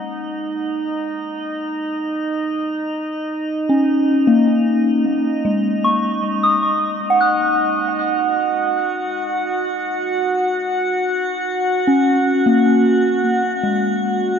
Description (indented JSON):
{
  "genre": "ambient",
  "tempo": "free time",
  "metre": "none",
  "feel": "none",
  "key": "unclear",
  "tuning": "A4 = 436 Hz",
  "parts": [
    { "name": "soft synth bell", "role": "arpeggios", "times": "0.0-14.4 s", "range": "G#3 to F#6", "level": "-17 LUFS", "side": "left 1 dB", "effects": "chorus, phaser, tape echo" },
    { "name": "drifting glass-harmonics texture", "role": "texture", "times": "0.0-14.4 s", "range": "D#4 to F#5", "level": "-21 LUFS", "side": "right 1 dB", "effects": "chorus, built-in reverb" }
  ],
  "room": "wet huge ambient reverb, RT60 7.0 s",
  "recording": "in a vast, echoing space",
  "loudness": "-16 LUFS",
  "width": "side -7 dB against mid",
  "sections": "0.0-14.4 A section",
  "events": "fade-in on synth texture 0.0-14.4; fade-out 12.1-14.4",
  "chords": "0.0 D#m7"
}